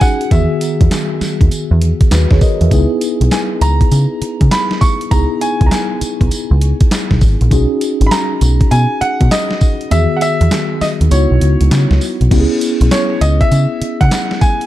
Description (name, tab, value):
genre	R&B, new jack swing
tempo	100 BPM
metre	4/4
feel	swing 65% on 16ths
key	C# dorian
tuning	A4 = 440 Hz
part	clear baby grand piano	melody	0.0-14.7 s	C#5 to C#6	-19 LUFS	equal	tape echo
part	mellow tine electric piano	accompaniment	0.0-14.7 s	D#3 to E5	-18 LUFS	equal	medium stereo tremolo
part	crisp 8-bit digital drum machine	drums	0.0-14.7 s	crash cymbal, handclaps, hi-hat, kick drum, snare drum, tambourine	-15 LUFS	equal	overdrive
part	deep dub picked electric bass	bass	0.3-14.1 s	G#1 to C#3	-12 LUFS	equal	none
room	little or no reverb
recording	dark, warm production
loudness	-11 LUFS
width	side -14 dB against mid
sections	0.0-12.3 A section; 12.3-14.7 A section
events	kick muted 9.9-12.3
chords	0.3 Emaj7; 2.7 C#m7; 7.5 B69; 9.9 Emaj7; 11.1 C#m11; 12.3 C#m7